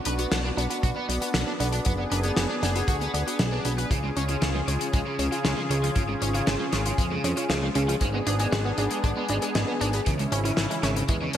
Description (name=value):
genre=synthwave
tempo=117 BPM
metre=4/4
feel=straight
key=unclear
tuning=A4 = 439 Hz
part: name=warm analog pad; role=sustained chords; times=0.0-11.4 s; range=C#3 to G#4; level=-30 LUFS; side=left 1 dB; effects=chorus, sidechain pumping
part: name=wide unison pluck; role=arpeggios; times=0.1-11.4 s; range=E3 to G#4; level=-32 LUFS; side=right 3 dB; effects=digital delay
part: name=crunchy overdriven guitar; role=riff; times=0.1-11.4 s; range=C#3 to B4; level=-32 LUFS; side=right 2 dB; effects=analog chorus, digital delay
part: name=fat analog bass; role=bass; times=0.1-11.4 s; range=F#1 to E#2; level=-28 LUFS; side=equal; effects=sidechain pumping
part: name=damped 70s drum kit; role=drums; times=0.1-11.4 s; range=hi-hat, snare drum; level=-30 LUFS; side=left 2 dB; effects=gated reverb
part: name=kick drum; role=drums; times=0.8-11.2 s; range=none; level=-26 LUFS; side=equal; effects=none
room=moderate lush hall reverb, RT60 2.1 s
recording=bright 1980s-style digital production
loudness=-23 LUFS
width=side -10 dB against mid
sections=0.0-11.4 A section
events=filter sweep on synth arpeggio sound 0.0-11.4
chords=0.0 Bm; 3.9 C#; 8.0 G#dim; 10.1 C#m